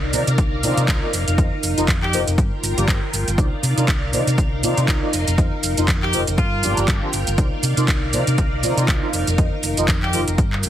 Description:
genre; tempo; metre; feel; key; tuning
filtered disco house; 120 BPM; 4/4; swing 57% on 16ths; C minor; A4 = 436 Hz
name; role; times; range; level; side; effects
string machine, full ensemble; sustained chords; 0.0-10.7 s; Eb4 to G5; -26 LUFS; equal; ensemble chorus, sidechain pumping
hollow-body short-scale fingered electric bass; bass; 0.0-10.7 s; F1 to C3; -22 LUFS; equal; sidechain pumping
mellow synth brass; accompaniment; 0.1-10.2 s; D4 to Eb5; -25 LUFS; equal; chorus, phaser, cassette tape, sidechain pumping
house drum kit; drums; 0.1-10.7 s; handclaps, hi-hat, shaker; -24 LUFS; right 2 dB; sidechain pumping on hats, sidechain pumping on cymbals, sidechain pumping on perc
electronic kick drum; drums; 0.4-10.5 s; none; -19 LUFS; equal; overdrive
brilliant horn section; melody; 2.0-2.2, 6.0-6.8, 10.0-10.2 s; F4 to G4; -26 LUFS; equal; sidechain pumping
room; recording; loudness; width
light reverb, digital ambience; heavily compressed radio sound, multiband compression; -17 LUFS; side -11 dB against mid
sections
0.0-10.7 A section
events
none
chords
0.0 Cm11; 1.1 F7sus4; 2.4 Gm7; 3.4 Cm11; 5.1 F7sus4; 6.4 Gm7; 7.4 Cm11; 9.1 F7sus4

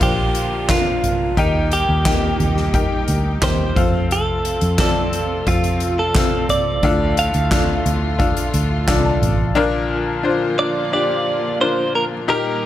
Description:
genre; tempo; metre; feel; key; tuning
piano-driven pop; 88 BPM; 4/4; straight; Bb major; A4 = 440 Hz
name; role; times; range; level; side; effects
direct-recorded clean electric guitar; melody; 0.0-12.7 s; Eb4 to F5; -21 LUFS; right 2 dB; none
bright upright piano; accompaniment; 0.0-12.7 s; A2 to A5; -22 LUFS; left 4 dB; none
warm studio string section; sustained chords; 0.0-12.7 s; C3 to G4; -28 LUFS; right 1 dB; none
vintage muted fingered electric bass; bass; 0.0-9.5 s; A1 to F2; -21 LUFS; equal; none
soft-mallet drum kit; drums; 0.0-9.4 s; handclaps, hi-hat, kick drum, snare drum, toms; -21 LUFS; right 1 dB; none
downlifter; sound effects; 0.0-4.1 s; none; -37 LUFS; right 2 dB; none
room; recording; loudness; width
light reverb, small room ambience; none; -16 LUFS; side -12 dB against mid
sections
0.0-9.6 A section; 9.6-12.7 B section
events
upright piano fill 8.5-9.6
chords
0.0 Bb; 1.4 Eb; 3.8 F; 6.8 Dm; 9.6 Bb

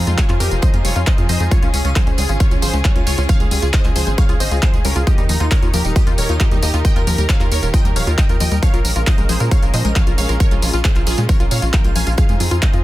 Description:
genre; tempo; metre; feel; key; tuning
uplifting trance; 135 BPM; 4/4; straight; unclear; A4 = 440 Hz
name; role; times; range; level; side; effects
wide unison pluck; melody; 0.0-12.8 s; Db4 to Ab5; -24 LUFS; right 1 dB; phaser, sidechain pumping, dub echo
rich chamber string section; sustained chords; 0.0-12.8 s; Db3 to Bb4; -27 LUFS; left 1 dB; sidechain pumping
tight sequenced synth; arpeggios; 0.0-12.8 s; F3 to F4; -26 LUFS; left 3 dB; chorus, sidechain pumping, dub echo
tight sequencer bass; bass; 0.0-12.8 s; Eb1 to Bb2; -18 LUFS; equal; sidechain pumping
punchy analog drum machine; drums; 0.1-12.8 s; handclaps, hi-hat, tambourine; -24 LUFS; equal; overdrive
electronic kick drum; drums; 0.2-12.7 s; none; -15 LUFS; equal; none
room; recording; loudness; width
digital ambience; dense, heavily limited modern master; -13 LUFS; side -16 dB against mid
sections
0.0-12.8 A section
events
none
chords
0.0 Fm7; 1.5 Db; 5.1 Eb; 8.6 Bbm7; 12.2 Fm7

